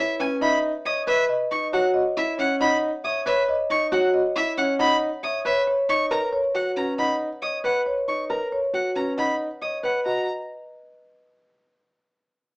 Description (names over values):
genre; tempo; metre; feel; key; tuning
classical, minimalist pattern music; 137 BPM; 5/4; straight; F# mixolydian; A4 = 438 Hz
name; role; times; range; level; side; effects
marimba with soft mallets; melody; 0.0-10.3 s; B4 to F#5; -25 LUFS; equal; none
dark baby grand piano; arpeggios; 0.0-10.3 s; C#4 to C#5; -25 LUFS; equal; none
rich violin; arpeggios; 0.0-10.3 s; E5 to D#6; -25 LUFS; equal; none
room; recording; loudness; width
moderate large studio reverb, RT60 0.9 s; small speaker sound; -20 LUFS; side -36 dB against mid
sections
0.0-10.1 A section; 10.1-12.2 B section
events
none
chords
0.0 C#m7; 1.3 F#7sus4; 5.7 Bmaj7; 10.1 F#